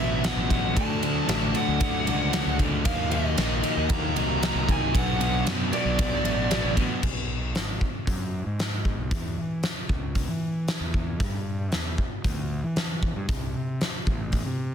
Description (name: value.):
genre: quiet-loud alternative rock.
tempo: 115 BPM.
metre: 4/4.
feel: straight.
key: B minor, B dorian from 7.0 s.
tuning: A4 = 440 Hz.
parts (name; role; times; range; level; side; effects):
smooth overdriven lead guitar; melody; 0.0-6.7 s; D5 to A#5; -30 LUFS; equal; none.
mellow tonewheel organ; sustained chords; 0.0-7.0 s; D4 to F#5; -42 LUFS; equal; none.
crunchy overdriven guitar; riff; 0.0-7.0 s; B2 to D#4; -29 LUFS; left 11 dB; none.
crunchy overdriven guitar; riff; 0.0-7.0 s; B2 to D#4; -30 LUFS; right 12 dB; none.
fuzz fingered electric bass; bass; 0.0-14.7 s; G#1 to E3; -30 LUFS; equal; overdrive.
huge arena drum kit; drums; 0.2-14.4 s; crash cymbal, hi-hat, kick drum, ride cymbal, snare drum; -27 LUFS; equal; none.
room: small room ambience.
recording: dense, heavily limited modern master.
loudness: -23 LUFS.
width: side -8 dB against mid.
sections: 0.0-7.0 A section; 7.0-14.7 B section.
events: none.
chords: 0.0 Bm; 0.8 D; 2.9 D#m; 4.9 Bm; 7.0 B5; 9.1 C#m; 11.2 G5; 13.3 Am.